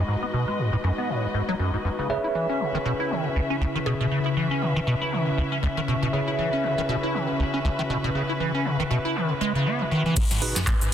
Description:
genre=acid house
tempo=119 BPM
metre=4/4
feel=swing 57% on 16ths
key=unclear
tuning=A4 = 440 Hz
part: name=dark analog pad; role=sustained chords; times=0.0-10.1 s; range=C#3 to B4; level=-30 LUFS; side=left 2 dB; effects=chorus, phaser, sidechain pumping
part: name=liquid acid bass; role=riff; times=0.0-10.9 s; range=C#2 to E4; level=-25 LUFS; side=equal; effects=phaser, tube saturation, analog chorus, sidechain pumping, tape echo
part: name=tine electric piano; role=stabs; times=0.0-10.6 s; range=D#4 to E5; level=-33 LUFS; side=right 2 dB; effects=fast stereo tremolo, tape echo
part: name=muted chamber string section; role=texture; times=0.0-10.9 s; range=G#3 to E5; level=-31 LUFS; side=left 2 dB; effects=sidechain pumping
part: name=mallet-like synth pluck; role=melody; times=3.9-4.4 s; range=G#4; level=-37 LUFS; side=right 2 dB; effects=chorus, phaser, tape echo
part: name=booming analog drum machine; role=drums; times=10.2-10.9 s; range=crash cymbal, handclaps, hi-hat, shaker, snare drum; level=-26 LUFS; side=equal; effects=none
part: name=electronic kick drum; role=drums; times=10.2-10.8 s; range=none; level=-24 LUFS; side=equal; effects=none
room=moderate spring reverb, RT60 2.7 s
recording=dense, heavily limited modern master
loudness=-22 LUFS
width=side -9 dB against mid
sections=0.0-10.2 A section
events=filter sweep on acid bass 0.0-10.2; filter sweep on analog synth pad 0.0-10.2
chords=0.0 G#m7; 2.1 C#m7; 10.2 G#m7

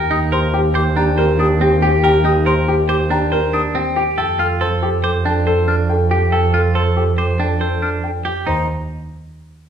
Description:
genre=classical, minimalist pattern music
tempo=140 BPM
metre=5/4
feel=straight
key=Eb lydian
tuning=A4 = 440 Hz
part: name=clear grand piano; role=melody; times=0.0-8.7 s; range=G4 to G5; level=-21 LUFS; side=left 6 dB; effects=none
part: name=mellow French horn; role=second line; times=0.0-8.2 s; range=G4 to A4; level=-21 LUFS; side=right 1 dB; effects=none
part: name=clean electric guitar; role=arpeggios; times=0.0-8.7 s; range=C4 to C5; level=-22 LUFS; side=right 5 dB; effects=none
part: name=rich double bass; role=bass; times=0.0-8.7 s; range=Eb2 to F2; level=-18 LUFS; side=right 2 dB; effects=none
part: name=mellow hollow concert flute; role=arpeggios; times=0.1-8.7 s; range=G5 to F6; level=-25 LUFS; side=left 5 dB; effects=none
room=moderate recital hall reverb, RT60 1.2 s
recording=none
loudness=-14 LUFS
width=side -8 dB against mid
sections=0.0-8.5 A section; 8.5-9.7 B section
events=none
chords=0.0 Ebmaj7; 4.2 Fadd9; 8.5 Eb5

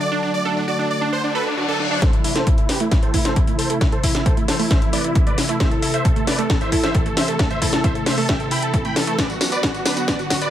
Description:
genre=uplifting trance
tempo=134 BPM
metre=4/4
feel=straight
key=A dorian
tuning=A4 = 441 Hz
part: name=supersaw chords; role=melody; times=0.0-10.5 s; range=D4 to B5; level=-23 LUFS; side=right 1 dB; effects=sidechain pumping, low-pass filter, digital delay
part: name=analog string pad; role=sustained chords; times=0.0-10.5 s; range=C3 to F#4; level=-26 LUFS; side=equal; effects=ensemble chorus, sidechain pumping
part: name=analog pluck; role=arpeggios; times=0.1-10.3 s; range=A3 to A4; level=-28 LUFS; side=right 4 dB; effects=chorus, sidechain pumping, digital delay
part: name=reverse cymbal and riser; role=sound effects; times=1.3-2.0, 9.2-10.5 s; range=none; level=-29 LUFS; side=left 6 dB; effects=none
part: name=electronic kick drum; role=drums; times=2.0-10.4 s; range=none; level=-19 LUFS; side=equal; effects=none
part: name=techno drum kit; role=drums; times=2.0-10.5 s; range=hi-hat, snare drum, tambourine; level=-23 LUFS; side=left 1 dB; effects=none
room=light reverb, digital ambience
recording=high-pass filter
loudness=-17 LUFS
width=side -11 dB against mid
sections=0.0-2.0 A section; 2.0-10.5 B section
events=reverse cymbal 1.3-2.0; build-up 2.0-10.5; drum fill 2.0-10.5; filter sweep on supersaw synth 2.0-10.5; filter sweep 2.0-10.5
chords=0.0 D; 2.0 Am; 9.2 Bm

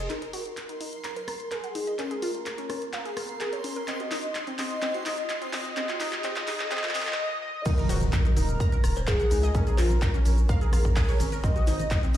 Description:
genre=progressive house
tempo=127 BPM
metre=4/4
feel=straight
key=unclear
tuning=A4 = 440 Hz
part: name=glassy wavetable pluck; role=arpeggios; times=0.0-12.2 s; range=C4 to Bb5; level=-35 LUFS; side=left 1 dB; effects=chorus, sidechain pumping, digital delay
part: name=saturated sub bass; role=bass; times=0.0-0.1, 7.9-12.2 s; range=Eb1 to Db2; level=-24 LUFS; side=equal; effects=sidechain pumping
part: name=riser and impact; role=sound effects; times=0.0-9.5 s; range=none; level=-35 LUFS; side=equal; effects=none
part: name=backwards swelling texture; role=texture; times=0.0-7.2 s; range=C6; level=-45 LUFS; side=right 1 dB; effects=built-in reverb, sidechain pumping
part: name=wide unison lead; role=melody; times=0.1-12.2 s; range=Ab4 to Eb5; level=-32 LUFS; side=equal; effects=analog chorus, digital delay
part: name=big-room dance drum kit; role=drums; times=0.1-12.2 s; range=crash cymbal, handclaps, hi-hat, rim click, shaker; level=-34 LUFS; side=equal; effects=sidechain pumping on perc, sidechain pumping on hats, sidechain pumping on cymbals
part: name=electronic kick drum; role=drums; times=7.7-12.0 s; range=none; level=-24 LUFS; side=equal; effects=none
part: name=modern studio drum kit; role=drums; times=7.7-12.2 s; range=hi-hat, shaker, snare drum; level=-46 LUFS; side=equal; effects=none
part: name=cowbell and congas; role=percussion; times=7.9-11.9 s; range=none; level=-38 LUFS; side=left 2 dB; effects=sidechain pumping on perc
room=light reverb, small room ambience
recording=played on a big sound system in a bare room, large studio reverb, high-pass filter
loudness=-25 LUFS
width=side -12 dB against mid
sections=0.1-7.7 A section; 7.7-12.2 B section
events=build-up 0.1-7.7; drum fill 0.1-7.2; riser 0.1-7.2; filter sweep on synth arpeggio sound 0.1-7.7; filter sweep on analog synth lead 0.1-7.7; filter sweep 0.1-7.7; break 7.2-7.7; drop 7.7-12.2; impact 7.7-9.5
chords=0.1 Eb5; 2.0 Bbm; 3.9 Cm; 5.8 F5; 7.7 Eb5; 9.5 Bbm7; 11.4 Ab7

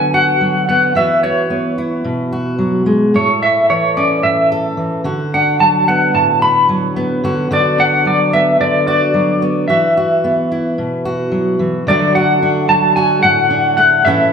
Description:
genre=folk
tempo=110 BPM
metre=4/4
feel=straight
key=unclear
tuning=A4 = 445 Hz
part: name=electric guitar through a small old amp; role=melody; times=0.0-14.3 s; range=C#5 to B5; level=-13 LUFS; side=equal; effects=tremolo
part: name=fingerpicked steel-string acoustic guitar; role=accompaniment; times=0.0-14.3 s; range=A2 to A4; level=-16 LUFS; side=equal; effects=none
room=wet large studio reverb, RT60 1.5 s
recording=band playing live in one room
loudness=-12 LUFS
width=side -6 dB against mid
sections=0.0-11.9 A section; 11.9-14.3 B section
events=none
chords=0.0 Bm/D; 1.0 Eadd9; 3.1 A; 5.0 D6; 7.5 Bm/D; 9.7 Esus2; 11.9 D

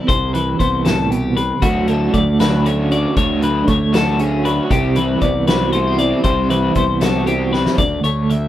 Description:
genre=math rock and midwest emo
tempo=78 BPM (dotted quarters)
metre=6/8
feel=straight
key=unclear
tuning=A4 = 439 Hz
part: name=twelve-string electric guitar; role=accompaniment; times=0.0-8.5 s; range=D2 to F#4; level=-20 LUFS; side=right 4 dB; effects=tremolo
part: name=twelve-string electric guitar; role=arpeggios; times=0.0-8.5 s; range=F#4 to E5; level=-20 LUFS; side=left 6 dB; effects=none
part: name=fuzz fingered electric bass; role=bass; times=0.1-8.5 s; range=C2 to D2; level=-20 LUFS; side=equal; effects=overdrive
part: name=loose indie drum kit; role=drums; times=0.1-8.4 s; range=hi-hat, kick drum, snare drum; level=-21 LUFS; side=left 1 dB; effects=none
part: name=crunchy overdriven guitar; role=riff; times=1.6-7.8 s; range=C3 to E4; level=-21 LUFS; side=equal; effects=harmonic tremolo
room=light reverb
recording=rough home demo mix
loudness=-14 LUFS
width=side -12 dB against mid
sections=0.0-7.8 A section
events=drum fill 7.5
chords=0.0 Cmaj7; 1.6 Dmaj7; 4.7 Cmaj7; 7.8 Dmaj7(no3)

